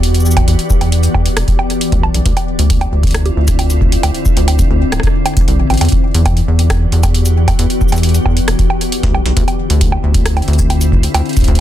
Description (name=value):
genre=IDM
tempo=135 BPM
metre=4/4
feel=straight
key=E minor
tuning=A4 = 440 Hz
part: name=glassy FM pad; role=sustained chords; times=0.0-11.6 s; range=D3 to D5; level=-18 LUFS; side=left 2 dB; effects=ensemble chorus, built-in reverb
part: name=rubbery square bass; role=bass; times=0.0-11.6 s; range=D1 to E2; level=-13 LUFS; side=equal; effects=tube saturation
part: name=booming analog drum machine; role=drums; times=0.0-11.6 s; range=bongos, cabasa, hi-hat, rim click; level=-20 LUFS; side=right 2 dB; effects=ping-pong delay
part: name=electronic kick drum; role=drums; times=0.4-11.6 s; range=none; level=-15 LUFS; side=equal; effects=none
room=little or no reverb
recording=dense, heavily limited modern master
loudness=-10 LUFS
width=side -12 dB against mid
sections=0.0-11.6 A section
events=none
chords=0.0 Em9; 2.3 Dm9; 5.8 Em9; 9.4 Dm9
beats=0.03 | 0.48 0.92 1.37 1.81 | 2.26 2.70 3.15 3.59 | 4.03 4.48 4.92 5.37 | 5.81 6.26 6.70 7.14 | 7.59 8.03 8.48 8.92 | 9.37 9.81 10.26 10.70 | 11.14 11.59